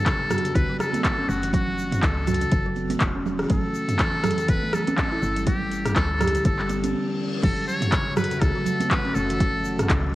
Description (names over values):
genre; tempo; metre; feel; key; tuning
afro house; 122 BPM; 4/4; swing 57% on 16ths; F# phrygian; A4 = 438 Hz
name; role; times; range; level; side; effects
trumpet with metal mute; melody; 0.0-10.1 s; F#4 to C#5; -28 LUFS; left 1 dB; cassette tape, tape echo
buzzing kalimba; arpeggios; 0.1-10.0 s; C#3 to A4; -27 LUFS; equal; sidechain pumping, low-pass filter, cassette tape, tape echo
deep house drum kit; drums; 0.1-10.0 s; crash cymbal, handclaps, hi-hat, rim click, toms; -27 LUFS; equal; overdrive, cassette tape
electronic kick drum; drums; 0.1-10.0 s; none; -24 LUFS; equal; overdrive, cassette tape
egg shaker; percussion; 0.1-10.0 s; none; -46 LUFS; left 10 dB; none
congas; percussion; 0.3-9.9 s; none; -31 LUFS; right 7 dB; none
woody FM bass; bass; 0.6-10.2 s; E1 to D2; -29 LUFS; equal; sidechain pumping
reverse cymbal; sound effects; 6.7-7.4 s; none; -38 LUFS; left 6 dB; none
warm analog pad; sustained chords; 7.4-10.2 s; C#3 to F#4; -36 LUFS; equal; chorus, sidechain pumping, cassette tape
room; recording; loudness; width
moderate spring reverb, RT60 1.9 s, digital ambience; home recording on cassette; -21 LUFS; side -16 dB against mid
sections
0.0-7.4 A section; 7.4-10.2 B section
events
reverse cymbal 6.7-7.4; stop 6.9-7.4; drop 7.4-10.2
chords
0.0 F#m; 3.5 A5; 5.5 Gsus2; 7.4 F#m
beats
0.06 0.55 1.04 | 1.53 2.03 2.52 3.01 | 3.50 3.99 4.49 4.98 | 5.47 5.96 6.45 6.94 | 7.43 7.93 8.42 8.91 | 9.40 9.89